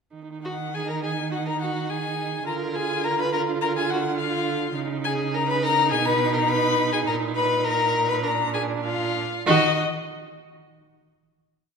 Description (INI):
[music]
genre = quick classical-period movement for string quartet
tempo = 103 BPM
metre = 4/4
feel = rubato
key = Eb minor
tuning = A4 = 439 Hz
[part]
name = rich viola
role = accompaniment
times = 0.1-9.8 s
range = D4 to Gb4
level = -29 LUFS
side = right 5 dB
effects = none
[part]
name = rich cello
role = bass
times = 0.1-9.8 s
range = Bb2 to Eb3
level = -29 LUFS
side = right 6 dB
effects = none
[part]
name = rich violin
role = melody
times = 0.4-9.8 s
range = Eb5 to Cb6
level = -25 LUFS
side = left 6 dB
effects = none
[part]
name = warm violin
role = second line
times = 0.5-9.8 s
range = Eb4 to B4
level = -28 LUFS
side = left 1 dB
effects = none
[sound]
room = moderate concert hall reverb, RT60 1.8 s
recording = minimal, uncompressed stereo recording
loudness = -21 LUFS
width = side -5 dB against mid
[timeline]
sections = 0.2-9.5 A section; 9.5-11.8 final chord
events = none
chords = 0.2 Ebmadd11; 2.5 Bb7/D; 4.8 Bmaj13/C# (rootless); 5.9 B6; 7.1 Eb5/Bb; 8.2 Bb; 9.5 Ebm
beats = | 0.15 0.74 1.32 1.90 | 2.47 3.04 3.62 4.19 | 4.76 5.34 5.91 6.49 | 7.07 7.65 8.24 8.84 | 9.46